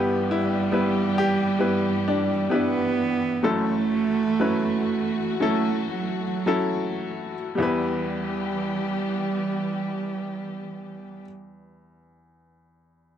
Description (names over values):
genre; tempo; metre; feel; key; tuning
acoustic folk-pop ballad; 52-69 BPM; 4/4; straight; E dorian; A4 = 440 Hz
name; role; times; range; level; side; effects
bright upright piano; melody; 0.0-13.2 s; F#1 to B4; -25 LUFS; left 2 dB; none
warm cello; second line; 0.0-11.2 s; F#3 to B3; -26 LUFS; right 5 dB; none
dark chamber string section; sustained chords; 0.0-11.2 s; G2 to G4; -33 LUFS; left 7 dB; none
room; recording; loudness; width
light reverb; dry, close 1970s-style studio recording; -22 LUFS; side -9 dB against mid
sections
0.0-7.6 A section; 7.6-12.2 B section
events
slowing down 0.0-7.6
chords
0.0 Em/G; 3.4 F#m7; 7.6 Em